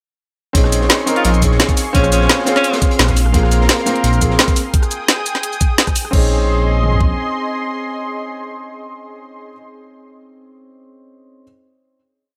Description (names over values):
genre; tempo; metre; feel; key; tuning
liquid drum and bass; 172 BPM; 4/4; straight; Bb dorian; A4 = 442 Hz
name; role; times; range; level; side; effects
warm grand piano; accompaniment; 0.5-11.4 s; Bb3 to Bb4; -23 LUFS; equal; tape echo
lush unison pad; sustained chords; 0.5-9.5 s; Ab4 to Eb6; -26 LUFS; equal; chorus, sidechain pumping
dark detuned saw bass; bass; 0.5-7.1 s; Bb1; -18 LUFS; equal; none
crunchy breakbeat drum kit; drums; 0.5-4.6 s; hi-hat, snare drum; -28 LUFS; equal; high-pass filter on hats, small room ambience, high-pass filter on snare, high-pass filter on room
drum and bass drum kit; drums; 0.5-7.1 s; kick drum, toms; -18 LUFS; equal; overdrive, small room ambience
drum and bass drum kit; drums; 0.5-6.2 s; crash cymbal, hi-hat, rim click, shaker, snare drum; -19 LUFS; equal; overdrive, small room ambience
bright alto saxophone; melody; 1.2-2.8 s; Db4 to F4; -23 LUFS; equal; tape echo
room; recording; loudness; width
small room ambience; none; -15 LUFS; mono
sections
0.6-6.1 drop; 6.1-8.9 final chord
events
drop 0.6-6.1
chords
0.6 Bbm11; 1.8 Bbm9; 3.2 Ab69/Bb; 4.6 Ebadd11/Ab; 6.1 Bbm11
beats
| 0.55 0.90 1.25 1.60 | 1.95 2.29 2.64 2.99 | 3.34 3.69 4.04 4.39 | 4.74 5.09 5.43 5.78 | 6.13 6.48 6.83 7.18 | 7.53 7.88 8.22 8.57